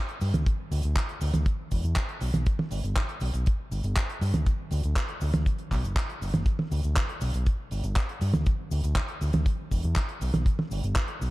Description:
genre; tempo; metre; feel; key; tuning
italo disco; 120 BPM; 4/4; straight; unclear; A4 = 440 Hz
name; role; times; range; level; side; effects
damped 70s drum kit; drums; 0.1-11.3 s; cabasa, handclaps, hi-hat, toms; -31 LUFS; right 2 dB; small room ambience
overdriven fingered electric bass; bass; 0.2-11.3 s; E1 to G2; -28 LUFS; equal; none
kick drum; drums; 0.5-11.1 s; none; -26 LUFS; equal; small room ambience
room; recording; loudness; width
little or no reverb; dark, warm production; -25 LUFS; side -19 dB against mid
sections
0.0-11.3 A section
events
none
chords
none

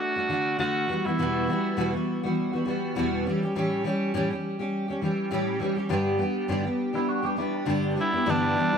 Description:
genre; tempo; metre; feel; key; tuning
acoustic pop; 102 BPM; 4/4; swing 55% on 16ths; A mixolydian; A4 = 440 Hz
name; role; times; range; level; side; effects
growling tenor saxophone; melody; 0.0-1.9, 8.0-8.8 s; D4 to F#4; -27 LUFS; right 1 dB; analog delay
fingerpicked steel-string acoustic guitar; accompaniment; 0.0-8.8 s; E2 to G4; -25 LUFS; equal; double-tracked left and right
clean electric guitar; second line; 7.0-8.2 s; D4 to G4; -32 LUFS; right 3 dB; phaser
reed electric piano; accompaniment; 8.3-8.8 s; A3 to D5; -33 LUFS; left 7 dB; overdrive, fast tremolo, analog delay
room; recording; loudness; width
light reverb, small room ambience; echo-heavy mix; -24 LUFS; side -7 dB against mid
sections
0.0-8.3 A section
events
none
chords
0.0 D; 0.9 Emadd9; 3.2 A7; 5.9 G; 8.3 G6

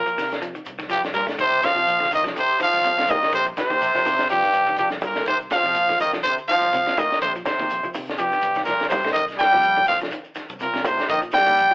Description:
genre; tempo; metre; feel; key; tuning
afrobeat; 124 BPM; 4/4; swing 55% on 16ths; C minor; A4 = 440 Hz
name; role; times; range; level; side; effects
growling trumpet; melody; 0.0-11.7 s; G4 to G5; -19 LUFS; equal; none
brilliant trombone; second line; 0.0-11.7 s; G2 to G3; -29 LUFS; equal; none
brilliant trombone section; second line; 0.0-11.7 s; G2 to G3; -30 LUFS; equal; none
clean electric guitar; arpeggios; 0.0-11.7 s; C3 to A3; -34 LUFS; left 1 dB; none
vintage muted fingered electric bass; bass; 0.0-11.7 s; Bb1 to C3; -41 LUFS; equal; none
tight funk drum kit; drums; 0.1-11.7 s; hi-hat, kick drum, snare drum; -31 LUFS; equal; none
shekere; percussion; 0.1-11.7 s; none; -40 LUFS; right 1 dB; none
congas; percussion; 1.6-11.7 s; none; -30 LUFS; right 1 dB; none
room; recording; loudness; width
moderate studio reverb, RT60 0.8 s; band playing live in one room, telephone sound; -18 LUFS; side -27 dB against mid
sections
0.0-11.7 A section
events
none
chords
0.0 Cm11

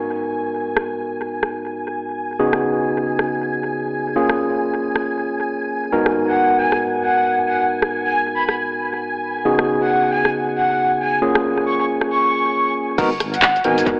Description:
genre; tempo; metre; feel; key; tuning
UK garage, two-step garage; 136 BPM; 4/4; swing 61% on 16ths; G# dorian; A4 = 439 Hz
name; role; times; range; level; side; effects
soft string machine; sustained chords; 0.0-14.0 s; G#5; -29 LUFS; equal; ensemble chorus, sidechain pumping
overdriven tine electric piano; stabs; 0.0-14.0 s; G#2 to A#4; -23 LUFS; equal; tape echo
garage drum kit; drums; 0.8-13.8 s; crash cymbal, handclaps, hi-hat, rim click; -23 LUFS; equal; low-pass filter on hats, low-pass filter on snare, low-pass filter on cymbals, analog delay
breathy flute-like synth lead; melody; 6.3-13.8 s; F#5 to C#6; -22 LUFS; equal; analog chorus, cassette tape, analog delay
deep soft wobble bass; bass; 13.0-13.9 s; G#1; -32 LUFS; equal; chorus, tube saturation, sidechain pumping
electronic kick drum; drums; 13.0-14.0 s; none; -25 LUFS; equal; none
maracas; percussion; 13.0-14.0 s; none; -37 LUFS; equal; analog delay
room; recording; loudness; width
wet plate reverb, RT60 2.1 s; echo-heavy mix, AM radio sound; -19 LUFS; mono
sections
0.0-13.0 A section; 13.0-14.0 B section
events
drop 13.0-14.0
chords
0.0 G#m7; 2.4 C#7sus4; 4.2 A#m7; 5.9 G#m7; 9.5 C#7sus4; 11.2 A#m7; 13.0 G#m7

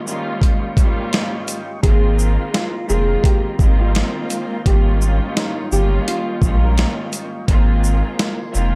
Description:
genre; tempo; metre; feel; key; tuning
hip hop, boom-bap hip-hop; 85 BPM; 4/4; swing 59% on 16ths; Ab major; A4 = 440 Hz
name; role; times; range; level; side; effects
tonewheel organ; sustained chords; 0.0-8.8 s; F4 to Db6; -36 LUFS; equal; overdrive, slow rotary speaker, high-pass filter, low-pass filter
rich studio string section; accompaniment; 0.1-8.8 s; Ab2 to F4; -27 LUFS; equal; cassette tape, high-pass filter, low-pass filter
boom bap sampler-style drum kit; drums; 0.1-8.7 s; hi-hat, kick drum, shaker, snare drum; -20 LUFS; equal; none
nylon-string guitar; melody; 1.8-7.0 s; Eb4 to Bb4; -27 LUFS; equal; high-pass filter, low-pass filter, analog delay
soft dub sub bass; bass; 1.8-8.8 s; F1 to Bb1; -19 LUFS; equal; none
room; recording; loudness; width
little or no reverb; none; -18 LUFS; mono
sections
0.0-1.8 A section; 1.8-8.8 A section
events
break 0.0-1.8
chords
0.0 Eb9/Ab; 1.8 Ab69; 4.7 Eb9; 7.5 Ab69

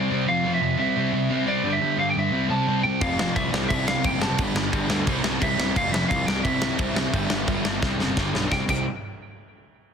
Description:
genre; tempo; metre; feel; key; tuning
punk rock; 175 BPM; 4/4; straight; C major; A4 = 441 Hz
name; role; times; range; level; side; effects
lightly driven lead guitar; melody; 0.0-8.9 s; D5 to B5; -26 LUFS; right 2 dB; ping-pong delay
sludgy distorted guitar; riff; 0.0-8.8 s; F2 to C4; -24 LUFS; left 1 dB; overdrive
fuzz picked electric bass; bass; 3.0-8.8 s; F1 to D2; -30 LUFS; equal; overdrive
big rock drum kit; drums; 3.0-8.8 s; crash cymbal, kick drum, snare drum; -26 LUFS; equal; none
room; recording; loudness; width
light reverb; dense, heavily limited modern master; -21 LUFS; side -7 dB against mid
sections
0.0-8.5 A section; 8.5-9.9 B section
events
drum fill 7.8-8.5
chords
0.3 F5; 0.8 C; 1.6 G5; 2.3 C5; 3.0 F5; 3.5 C5; 4.4 G; 5.1 C; 5.8 F5; 6.3 C; 7.1 G5; 7.8 C; 8.2 G; 8.5 C5

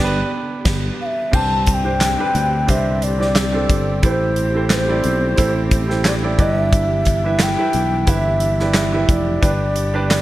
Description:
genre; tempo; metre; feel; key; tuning
piano-driven pop; 89 BPM; 4/4; swing 56% on 16ths; C major; A4 = 440 Hz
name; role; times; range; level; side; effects
mellow hollow bansuri; melody; 0.0-10.2 s; C5 to A5; -22 LUFS; left 2 dB; none
warm baby grand piano; accompaniment; 0.0-10.2 s; G2 to E5; -22 LUFS; right 4 dB; none
rich studio string section; sustained chords; 0.0-10.2 s; D3 to G4; -30 LUFS; equal; none
fingered electric bass; bass; 0.0-10.2 s; F1 to D2; -20 LUFS; equal; none
huge arena drum kit; drums; 0.7-10.2 s; crash cymbal, handclaps, hi-hat, kick drum, snare drum; -20 LUFS; equal; none
room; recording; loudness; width
little or no reverb; dark, warm production; -15 LUFS; side -15 dB against mid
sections
0.0-1.3 A section; 1.3-10.2 B section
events
band accent 0.0-1.3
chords
0.0 G; 1.3 Csus2; 4.0 Am7; 6.4 Em7/G

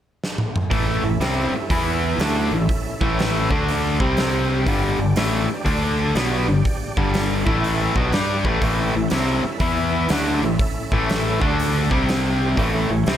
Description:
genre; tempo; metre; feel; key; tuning
blues rock power trio and southern rock; 121 BPM; 4/4; swing 65% on 8ths; unclear; A4 = 440 Hz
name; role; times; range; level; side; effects
huge arena drum kit; drums; 0.2-13.2 s; hi-hat, kick drum, snare drum, toms; -24 LUFS; equal; none
overdriven tonewheel organ; sustained chords; 0.7-13.2 s; A3 to F5; -30 LUFS; right 4 dB; slow rotary speaker, chorus vibrato
overdriven electric guitar; riff; 0.7-13.2 s; G2 to G4; -20 LUFS; left 1 dB; none
growling fingered electric bass; bass; 0.7-13.2 s; G1 to G2; -24 LUFS; equal; overdrive
room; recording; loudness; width
light reverb; none; -18 LUFS; side -10 dB against mid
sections
0.7-13.2 A section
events
drum fill 0.2-0.7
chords
0.0 N.C.; 0.7 A; 1.7 E5; 2.2 A; 3.4 D5; 3.9 C5; 4.7 G5; 5.6 D5; 6.1 G5; 7.4 A5; 7.9 G5; 8.6 A; 9.6 E5; 10.1 A; 11.3 D5; 11.8 C5; 12.6 A

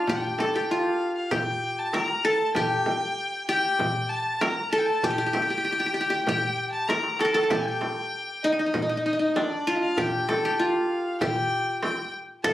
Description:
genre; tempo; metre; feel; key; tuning
Arabic maqam ensemble; 97 BPM; 4/4; straight; unclear; A4 = 440 Hz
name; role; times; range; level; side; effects
qanun; melody; 0.0-12.5 s; D4 to Bb4; -25 LUFS; equal; plate reverb
rich violin; second line; 0.0-12.5 s; D5 to Bb5; -29 LUFS; left 2 dB; none
darbuka; percussion; 0.1-12.5 s; none; -35 LUFS; equal; none
frame drum; percussion; 0.1-12.5 s; none; -31 LUFS; right 2 dB; none
room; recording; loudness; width
moderate studio reverb, RT60 0.6 s; recorded on a phone in the room, club reverb, compression; -23 LUFS; side -14 dB against mid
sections
0.0-12.5 A section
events
drum fill 6.9-7.5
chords
none

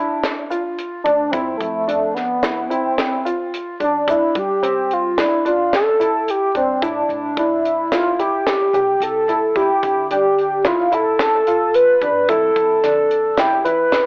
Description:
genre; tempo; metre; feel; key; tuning
progressive instrumental, band music in an uneven meter; 110 BPM; 5/4; straight; D dorian; A4 = 440 Hz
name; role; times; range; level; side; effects
hollow square lead; melody; 0.0-14.1 s; A3 to B4; -16 LUFS; equal; chorus, cassette tape
dark baby grand piano; arpeggios; 0.0-14.1 s; C4 to G4; -22 LUFS; equal; cassette tape
tight funk drum kit; drums; 0.2-14.1 s; hi-hat, kick drum, snare drum; -23 LUFS; equal; cassette tape
tube shaker; percussion; 0.5-13.8 s; none; -52 LUFS; equal; none
upright bass; bass; 1.1-14.1 s; B1 to G3; -35 LUFS; equal; none
room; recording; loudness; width
moderate spring reverb, RT60 1.5 s, small room ambience; home recording on cassette, telephone sound; -15 LUFS; side -33 dB against mid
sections
0.0-14.1 A section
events
none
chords
0.0 Dmadd9; 1.3 Fmaj7; 4.1 Gsus4; 6.8 A7(no3); 9.6 Dmadd9; 12.3 Fmaj7

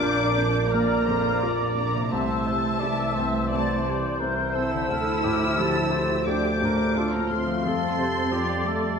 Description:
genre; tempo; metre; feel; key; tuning
cinematic; 86 BPM; 4/4; rubato; unclear; A4 = 439 Hz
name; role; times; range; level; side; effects
muted studio violin section; melody; 0.0-9.0 s; A5 to E6; -32 LUFS; left 4 dB; none
large flute ensemble; second line; 0.0-9.0 s; D6 to A6; -31 LUFS; left 2 dB; none
mellow cor anglais; second line; 0.0-9.0 s; G4 to E5; -32 LUFS; right 3 dB; none
muted studio violin section; second line; 0.0-9.0 s; A5 to E6; -35 LUFS; left 2 dB; none
felt-muted upright piano; accompaniment; 0.0-9.0 s; Bb1 to F4; -29 LUFS; left 1 dB; none
muted studio viola section; accompaniment; 0.0-9.0 s; F4 to E5; -32 LUFS; equal; none
mellow French horn section; sustained chords; 0.0-9.0 s; E3 to C5; -30 LUFS; equal; none
concert harp; arpeggios; 0.0-9.0 s; Bb2 to A5; -36 LUFS; left 7 dB; none
muted studio cello section; bass; 0.0-9.0 s; A3 to E4; -30 LUFS; right 2 dB; none
muted studio double bass section; bass; 0.0-9.0 s; Bb1 to F2; -31 LUFS; right 3 dB; none
room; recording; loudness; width
wet scoring stage reverb, RT60 1.5 s; none; -22 LUFS; side -6 dB against mid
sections
0.0-9.0 A section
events
none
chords
0.0 Bb; 2.1 Am/C; 4.9 Dm; 7.6 Fadd9

